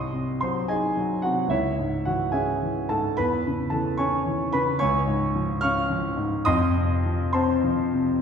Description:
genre	classical, romantic character piece for solo piano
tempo	67-75 BPM (dotted quarters)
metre	6/8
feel	rubato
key	C# minor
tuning	A4 = 440 Hz
part	clear concert grand piano	solo	0.0-8.2 s	B#1 to F6	-22 LUFS	equal	none
room	wet recital hall reverb, RT60 1.6 s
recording	recorded in a church or concert hall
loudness	-22 LUFS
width	side -7 dB against mid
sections	0.0-8.2 A section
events	none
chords	0.0 G#7/B#; 1.5 C#m; 3.2 C#m/E; 4.8 Db; 6.4 F7

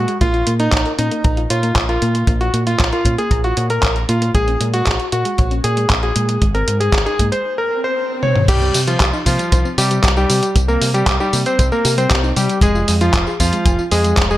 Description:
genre	italo disco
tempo	116 BPM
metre	4/4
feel	straight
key	unclear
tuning	A4 = 435 Hz
part	clear electric grand piano	melody	0.0-14.4 s	F3 to Db5	-18 LUFS	equal	digital delay, shimmer reverb
part	soft round pluck	arpeggios	0.0-14.4 s	G3 to Bb5	-25 LUFS	left 1 dB	chorus, digital delay
part	fingered electric bass with an envelope filter	bass	0.0-14.4 s	F1 to C3	-19 LUFS	equal	tube saturation
part	detuned 8-bit digital drum machine	drums	0.1-14.4 s	crash cymbal, handclaps, hi-hat, tambourine, toms	-20 LUFS	equal	gated reverb
part	kick drum	drums	0.2-14.3 s	none	-17 LUFS	equal	none
part	swell	sound effects	7.6-8.5 s	none	-26 LUFS	equal	none
room	light reverb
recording	none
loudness	-14 LUFS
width	side -15 dB against mid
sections	0.0-8.5 A section; 8.5-14.4 B section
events	swell 7.6-8.5; drum fill 8.2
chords	0.2 Bbm; 4.3 Gbadd9/Bb; 6.4 Ab; 8.5 Cm; 12.6 Fm

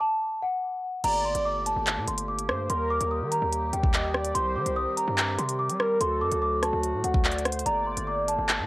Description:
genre	hip hop, drill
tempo	145 BPM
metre	4/4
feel	half-time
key	G harmonic minor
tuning	A4 = 438 Hz
part	celesta	melody	0.0-8.7 s	F#5 to Eb6	-28 LUFS	equal	cassette tape
part	warm velvety synth lead	second line	1.0-8.4 s	A4 to Eb5	-31 LUFS	equal	chorus, cassette tape, analog delay
part	mellow woodwind section	sustained chords	1.0-8.7 s	D3 to G4	-34 LUFS	equal	cassette tape
part	distorted 808-style bass	bass	1.0-8.7 s	G1 to G3	-32 LUFS	equal	distortion
part	drill drum kit	drums	1.0-8.6 s	crash cymbal, handclaps, hi-hat, kick drum, rim click	-27 LUFS	equal	none
room	light reverb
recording	home recording on cassette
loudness	-24 LUFS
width	side -20 dB against mid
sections	0.0-1.0 A section; 1.0-8.7 B section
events	stop 0.0-1.0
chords	0.0 N.C.; 1.0 Gmadd9; 2.7 Eb; 4.4 Cm; 6.0 D; 7.7 Gmadd9

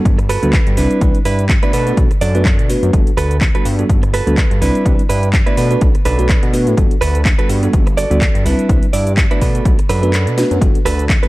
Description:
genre	filtered disco house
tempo	125 BPM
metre	4/4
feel	swing 56% on 16ths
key	G major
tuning	A4 = 439 Hz
part	bell-like tine electric piano	accompaniment	0.0-11.3 s	G3 to D5	-20 LUFS	equal	phaser, vintage 12-bit sampler grit, sidechain pumping, low-pass filter
part	fat analog bass	bass	0.1-11.2 s	G1 to B2	-17 LUFS	equal	tube saturation, sidechain pumping, low-pass filter
part	electronic kick drum	drums	0.1-11.2 s	none	-14 LUFS	equal	overdrive
part	house drum kit	drums	0.1-11.3 s	handclaps, hi-hat, shaker, snare drum	-23 LUFS	equal	overdrive, sidechain pumping on hats, sidechain pumping on perc
part	direct-recorded clean electric guitar	riff	0.2-11.3 s	D4 to D5	-21 LUFS	right 4 dB	spring reverb, sidechain pumping, low-pass filter
room	little or no reverb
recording	dark, warm production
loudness	-12 LUFS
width	side -19 dB against mid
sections	0.0-11.3 A section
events	kick drops out 10.1-10.6; drum fill 10.4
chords	0.0 Gmaj9; 0.8 Cmaj9; 1.7 Bm7; 2.9 Gmaj9; 4.6 Cmaj9; 5.6 Bm7; 6.8 Gmaj9; 8.5 Cmaj9; 9.4 Bm7; 10.6 Gmaj9

